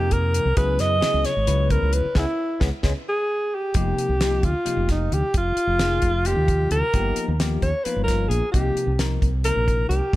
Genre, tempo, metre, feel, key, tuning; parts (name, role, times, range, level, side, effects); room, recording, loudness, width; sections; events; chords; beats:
electric jazz fusion; 264 BPM (eighths); 7/8; straight; A4 = 441 Hz
mellow alto saxophone; melody; 0.0-10.2 s; Eb4 to Eb5; -23 LUFS; equal
bell-like tine electric piano; accompaniment; 0.0-10.2 s; C3 to Cb5; -29 LUFS; left 4 dB; phaser
fingered electric bass; bass; 0.0-10.2 s; F1 to Gb2; -23 LUFS; equal
damped 70s drum kit; drums; 0.1-10.2 s; hi-hat, kick drum, snare drum; -24 LUFS; equal
small room ambience; -19 LUFS; side -16 dB against mid
0.0-3.8 A section; 3.8-10.2 B section
band accent 2.2-3.8; tine electric piano fill 3.1-3.8
0.0 F7sus2; 0.6 Dbm7; 3.8 F7sus2; 6.9 G7alt; 8.5 Cm7
0.12 0.35 | 0.57 0.80 1.03 1.26 1.48 1.71 1.94 | 2.17 2.39 2.62 2.85 3.07 3.30 3.53 | 3.75 3.98 4.21 4.44 4.67 4.89 5.12 | 5.35 5.58 5.80 6.03 6.26 6.49 6.71 | 6.94 7.17 7.40 7.62 7.85 8.08 8.31 | 8.54 8.77 8.99 9.22 9.45 9.68 9.90 | 10.13